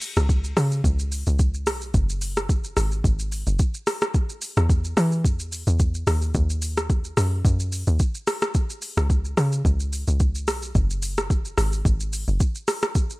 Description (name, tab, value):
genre	amapiano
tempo	109 BPM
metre	4/4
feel	swing 55% on 16ths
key	unclear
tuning	A4 = 440 Hz
part	smooth R&B drum kit	drums	0.0-13.2 s	hi-hat, kick drum, rim click, shaker	-23 LUFS	equal	overdrive
part	deep log drum bass	bass	0.2-12.4 s	F#1 to E3	-23 LUFS	equal	none
room	digital ambience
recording	none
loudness	-21 LUFS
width	side -22 dB against mid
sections	0.0-13.2 A section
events	none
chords	none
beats	0.29 0.84 1.39 | 1.94 2.49 3.04 3.59 | 4.14 4.70 5.25 5.80 | 6.35 6.90 7.45 8.00 | 8.55 9.10 9.65 10.20 | 10.75 11.30 11.85 12.40 | 12.95